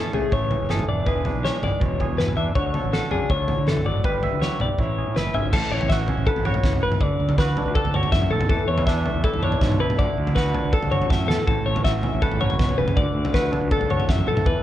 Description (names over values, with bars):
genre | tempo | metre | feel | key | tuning
math rock and midwest emo | 161 BPM | 4/4 | straight | A major | A4 = 437 Hz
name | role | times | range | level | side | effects
twangy electric guitar | accompaniment | 0.0-14.6 s | A2 to E5 | -28 LUFS | right 6 dB | none
twelve-string electric guitar | arpeggios | 0.0-14.6 s | G#4 to E5 | -25 LUFS | left 5 dB | slapback echo
fuzz fingered electric bass | bass | 0.1-14.5 s | E1 to D3 | -26 LUFS | equal | overdrive
loose indie drum kit | drums | 0.1-14.5 s | crash cymbal, kick drum, snare drum, toms | -23 LUFS | equal | none
room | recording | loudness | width
light reverb | worn, warbling old tape, cassette tape, warbly pitch drift | -19 LUFS | side -12 dB against mid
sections
0.0-5.5 A section; 5.5-14.6 B section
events
drum fill 4.8-5.5, 11.1-11.5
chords
0.0 Amaj7; 0.9 E7; 2.6 Dmaj7; 4.0 G6; 4.8 Amaj9; 5.5 A69; 7.0 Dadd9; 8.5 E7sus4; 10.0 Dmaj9; 11.5 A69; 13.0 Dmaj9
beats
0.33 0.70 | 1.07 1.44 1.81 2.19 | 2.56 2.93 3.30 3.67 | 4.04 4.42 4.79 5.16 | 5.53 5.90 6.27 6.64 | 7.01 7.38 7.76 8.13 | 8.50 8.87 9.24 9.62 | 9.99 10.36 10.73 11.11 | 11.48 11.85 12.22 12.60 | 12.97 13.34 13.72 14.09 | 14.46